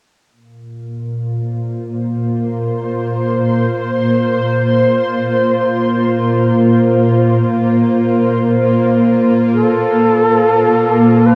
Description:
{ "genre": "ambient", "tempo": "free time", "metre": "none", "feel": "none", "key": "unclear", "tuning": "A4 = 440 Hz", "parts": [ { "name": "shimmering ambient pad", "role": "sustained chords", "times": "0.8-11.3 s", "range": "Bb2 to A5", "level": "-16 LUFS", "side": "equal", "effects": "chorus, built-in reverb, cassette tape" }, { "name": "bowed-like drone", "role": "drone", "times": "1.1-11.3 s", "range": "Bb3 to F4", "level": "-20 LUFS", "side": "equal", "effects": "built-in reverb, cassette tape" }, { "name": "reedy shakuhachi", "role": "melody", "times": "9.5-11.3 s", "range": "A4 to C5", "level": "-15 LUFS", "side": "equal", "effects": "cassette tape, plate reverb" } ], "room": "wet small room reverb, RT60 0.5 s", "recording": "home recording on cassette", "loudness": "-14 LUFS", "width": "mono", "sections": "0.3-11.3 A section", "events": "filter sweep on ambient pad 0.3-11.3", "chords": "0.3 Bbsus2; 9.5 F/Bb" }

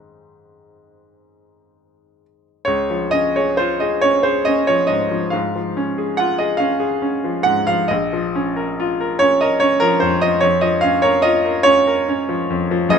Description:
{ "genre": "classical, romantic nocturne for solo piano", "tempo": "42-49 BPM (dotted quarters)", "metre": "12/8", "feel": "rubato", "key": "Db major", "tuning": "A4 = 440 Hz", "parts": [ { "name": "clear grand piano", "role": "solo", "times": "0.0-13.0 s", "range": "Gb1 to Gb5", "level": "-15 LUFS", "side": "equal", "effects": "none" } ], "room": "little or no reverb", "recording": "nothing above 10.7 kHz", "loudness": "-15 LUFS", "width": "side -7 dB against mid", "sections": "0.0-2.7 A section; 2.7-13.0 B section", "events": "none", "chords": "0.0 Ab; 2.7 Db; 7.9 Bbm" }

